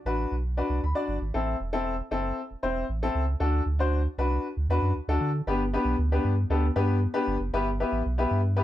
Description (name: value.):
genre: uptempo 1960s-style soul.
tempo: 116 BPM.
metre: 4/4.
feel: straight.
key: G major.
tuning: A4 = 440 Hz.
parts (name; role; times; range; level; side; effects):
bright upright piano; accompaniment; 0.1-8.6 s; B3 to B5; -28 LUFS; left 2 dB; none.
warm sub bass; bass; 0.1-8.6 s; E1 to D3; -27 LUFS; right 1 dB; none.
room: light reverb.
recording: none.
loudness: -24 LUFS.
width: side -13 dB against mid.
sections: 0.0-5.5 A section; 5.5-8.6 B section.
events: upright piano fill 0.3-1.3.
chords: 0.0 Bm; 1.3 Am; 3.4 D; 5.5 G; 7.5 Em/G.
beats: 0.32 0.83 | 1.35 1.86 2.38 2.90 | 3.41 3.93 4.44 4.96 | 5.47 5.99 6.51 7.02 | 7.54 8.05 8.57.